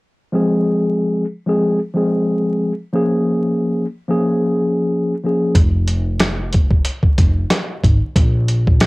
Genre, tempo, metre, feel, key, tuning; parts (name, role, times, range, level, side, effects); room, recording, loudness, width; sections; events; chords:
hip hop, boom-bap hip-hop; 92 BPM; 4/4; swing 55% on 16ths; F minor; A4 = 440 Hz
mellow tine electric piano; accompaniment; 0.3-5.5 s; F3 to Ab4; -16 LUFS; left 1 dB; medium stereo tremolo, high-pass filter, low-pass filter, cassette tape
upright bass; bass; 5.5-8.9 s; F1 to Bb1; -17 LUFS; equal
dusty soul sampler-style drum kit; drums; 5.5-8.9 s; hi-hat, kick drum, rim click, snare drum; -14 LUFS; equal
light reverb; home recording on cassette, vinyl crackle; -15 LUFS; side -23 dB against mid
0.3-8.9 A section
0.3 Fm; 2.9 Bbm7; 5.6 N.C.